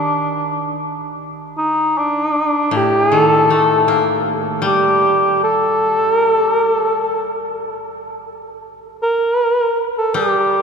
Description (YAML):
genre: japanese traditional, Japanese chamber music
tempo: 74-81 BPM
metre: 4/4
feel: rubato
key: unclear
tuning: A4 = 439 Hz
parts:
  - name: dark cor anglais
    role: melody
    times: 0.0-10.6 s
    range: D4 to Bb4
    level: -15 LUFS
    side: equal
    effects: none
  - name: koto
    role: accompaniment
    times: 0.0-10.6 s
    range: A2 to Bb3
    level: -22 LUFS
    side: left 2 dB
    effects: none
room: wet cathedral reverb, RT60 5.9 s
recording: recorded in a church or concert hall, faint mains hum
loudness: -14 LUFS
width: side -6 dB against mid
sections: 0.0-10.6 A section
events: none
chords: none